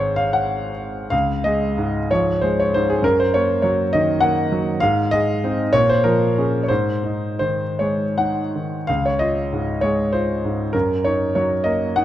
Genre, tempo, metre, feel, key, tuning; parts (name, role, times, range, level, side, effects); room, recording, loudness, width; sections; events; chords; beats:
classical, romantic character piece for solo piano; 50-68 BPM (dotted quarters); 6/8; rubato; Db major; A4 = 441 Hz
warm concert grand piano; solo; 0.0-12.0 s; Ab1 to Gb5; -17 LUFS; equal
moderate concert hall reverb, RT60 2.4 s; close, detailed microphones; -17 LUFS; side -12 dB against mid
0.0-1.1 A section; 1.1-12.0 B section
0.0 Ab; 1.1 Db; 3.0 Ebm/Gb; 4.8 Ab; 5.7 Bbm7; 6.7 Ab; 8.9 Db; 10.7 Ebm/Gb
| 1.12 2.10 | 3.02 3.91 | 4.80 5.72 | 6.70 7.79 | 8.88 9.82 | 10.74 11.66